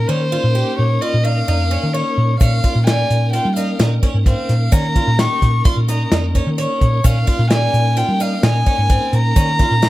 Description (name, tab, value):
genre	progressive instrumental, band music in an uneven meter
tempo	129 BPM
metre	5/4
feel	straight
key	Bb dorian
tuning	A4 = 435 Hz
part	dark violin	melody	0.0-9.9 s	C5 to Db6	-21 LUFS	left 1 dB	tape echo
part	tonewheel organ	accompaniment	0.0-9.9 s	Bb3 to Bb4	-25 LUFS	left 2 dB	overdrive, chorus vibrato, slow rotary speaker
part	hollow-body short-scale picked electric bass	bass	0.0-9.9 s	F2 to G3	-17 LUFS	equal	none
part	picked twelve-string acoustic guitar	arpeggios	0.1-9.9 s	G3 to G4	-25 LUFS	right 3 dB	none
part	warm soul drum kit	drums	2.4-9.9 s	hi-hat, kick drum, snare drum	-16 LUFS	equal	none
part	egg shaker	percussion	2.4-9.9 s	none	-34 LUFS	left 7 dB	none
room	light reverb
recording	none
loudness	-14 LUFS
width	side -16 dB against mid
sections	0.0-9.9 A section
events	none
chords	0.0 Bbm